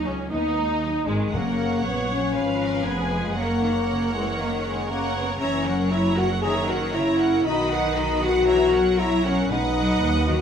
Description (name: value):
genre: quick classical-period movement for symphony orchestra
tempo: 117 BPM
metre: 4/4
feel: straight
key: unclear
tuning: A4 = 440 Hz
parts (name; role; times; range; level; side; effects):
- warm studio violin section; melody; 0.0-10.4 s; G#3 to B5; -31 LUFS; right 1 dB; none
- rich studio violin section; second line; 0.0-10.4 s; G#3 to F#5; -32 LUFS; right 2 dB; none
- rich studio viola section; accompaniment; 0.0-10.4 s; G#3 to C#5; -31 LUFS; left 1 dB; none
- warm French horn section; sustained chords; 0.0-10.4 s; G#3 to G#4; -23 LUFS; left 2 dB; none
- clear studio cello section; bass; 0.0-10.4 s; C#3 to B3; -29 LUFS; equal; none
- rich studio double bass section; bass; 0.0-10.4 s; F1 to D#2; -29 LUFS; right 2 dB; none
- timpani; percussion; 1.3-2.1, 9.5-10.2 s; F#2 to B2; -35 LUFS; left 1 dB; none
room: wet stone room reverb, RT60 1.0 s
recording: none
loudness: -20 LUFS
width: side -8 dB against mid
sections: 0.0-10.4 A section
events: none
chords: 0.0 B; 1.3 F#; 2.4 Fdim/Ab; 3.4 F#7; 7.5 B; 8.5 F#7/B; 9.5 B